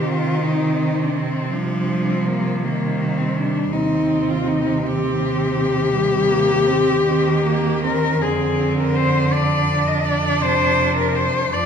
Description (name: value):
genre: classical, lyrical piece for cello ensemble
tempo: 54 BPM (dotted quarters)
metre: 12/8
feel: rubato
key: C minor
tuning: A4 = 441 Hz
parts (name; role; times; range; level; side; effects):
- warm cello; melody; 0.0-11.7 s; Bb3 to Eb5; -20 LUFS; left 5 dB; none
- rich cello; second line; 0.0-11.7 s; G3 to D4; -24 LUFS; right 9 dB; none
- rich cello; accompaniment; 0.0-11.7 s; C3 to F3; -23 LUFS; equal; none
- rich cello; bass; 0.0-11.7 s; Eb2 to C3; -26 LUFS; right 3 dB; none
room: wet recital hall reverb, RT60 1.6 s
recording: minimal, uncompressed stereo recording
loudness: -17 LUFS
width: side -7 dB against mid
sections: 0.0-11.7 A section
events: none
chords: 0.0 Cm; 3.7 Cm/Eb; 8.2 F5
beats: 0.44 1.53 2.63 | 3.73 4.85 5.94 7.07 | 8.21 9.32 10.41 11.52